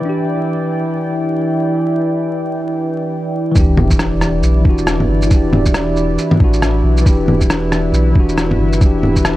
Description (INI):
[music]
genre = future garage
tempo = 137 BPM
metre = 4/4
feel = swing 60% on 16ths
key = E minor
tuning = A4 = 436 Hz
[part]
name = bell-like tine electric piano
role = accompaniment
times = 0.0-9.4 s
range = E3 to G4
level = -18 LUFS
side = left 1 dB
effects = medium stereo tremolo, sidechain pumping, analog delay
[part]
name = deep dark ambient pad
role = sustained chords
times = 0.0-9.4 s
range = E3 to G5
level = -20 LUFS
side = right 1 dB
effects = chorus, built-in reverb, sidechain pumping
[part]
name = soft dub sub bass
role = bass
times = 3.5-9.4 s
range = E1 to B1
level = -17 LUFS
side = equal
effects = tube saturation, sidechain pumping
[part]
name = electronic kick drum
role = drums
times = 3.6-9.2 s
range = none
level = -12 LUFS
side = equal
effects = none
[part]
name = electronic shaker, bongos and rim click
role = drums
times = 3.6-9.4 s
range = none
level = -17 LUFS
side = equal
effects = none
[part]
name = sub drop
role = sound effects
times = 3.6-5.3 s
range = none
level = -20 LUFS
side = equal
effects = none
[sound]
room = light reverb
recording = vinyl crackle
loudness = -12 LUFS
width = side -16 dB against mid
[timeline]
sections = 0.0-3.6 A section; 3.6-9.4 B section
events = impact 3.6-5.3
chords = 0.0 Em7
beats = | 0.05 0.49 0.93 1.37 | 1.81 2.24 2.68 3.12 | 3.56 4.00 4.43 4.87 | 5.31 5.75 6.19 6.62 | 7.06 7.50 7.94 8.38 | 8.81 9.25